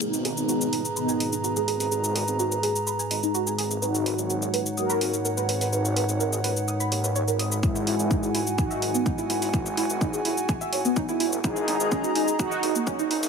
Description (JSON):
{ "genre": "melodic techno", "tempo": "126 BPM", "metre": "4/4", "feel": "straight", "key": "G# minor", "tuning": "A4 = 441 Hz", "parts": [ { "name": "mellow synth brass", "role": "melody", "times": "0.0-13.0 s", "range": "G#3 to A#4", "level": "-30 LUFS", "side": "equal", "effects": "chorus, sidechain pumping, tape echo" }, { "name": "dark analog pad", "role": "sustained chords", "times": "0.0-13.3 s", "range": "D#4 to A#5", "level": "-30 LUFS", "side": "right 2 dB", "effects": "chorus, sidechain pumping" }, { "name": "woody wave-folded pluck", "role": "arpeggios", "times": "0.0-13.3 s", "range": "A#3 to D#6", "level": "-29 LUFS", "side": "right 2 dB", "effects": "lush chorus, sidechain pumping, dub echo" }, { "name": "swelling detuned saw bass", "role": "bass", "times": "0.0-13.3 s", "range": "D#1 to D#2", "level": "-34 LUFS", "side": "equal", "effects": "sidechain pumping, high-pass filter" }, { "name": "analog drone", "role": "drone", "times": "0.7-13.3 s", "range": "G#2", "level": "-32 LUFS", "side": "left 1 dB", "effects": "chorus, sidechain pumping" }, { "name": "punchy analog drum machine", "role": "drums", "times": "0.0-13.3 s", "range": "hi-hat, shaker, toms", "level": "-30 LUFS", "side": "left 1 dB", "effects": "overdrive, high-pass filter on perc, high-pass filter on hats, high-pass filter on toms" }, { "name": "electronic kick drum", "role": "drums", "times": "7.6-13.0 s", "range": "none", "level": "-26 LUFS", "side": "equal", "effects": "none" } ], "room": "light reverb", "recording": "high-pass filter", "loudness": "-23 LUFS", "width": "side -6 dB against mid", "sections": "0.0-13.3 A section", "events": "build-up 0.0-13.3; filter sweep on synth pluck 0.0-13.3; filter sweep on analog polysynth 0.0-13.3; drum fill 7.6-13.3", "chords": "0.0 G#madd9; 3.8 Badd9; 7.6 Eadd9; 11.4 D#sus4", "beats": "| 0.01 0.49 0.97 1.44 | 1.92 2.39 2.87 3.35 | 3.82 4.30 4.78 5.25 | 5.73 6.20 6.68 7.16 | 7.63 8.11 8.59 9.06 | 9.54 10.01 10.49 10.97 | 11.44 11.92 12.39 12.87" }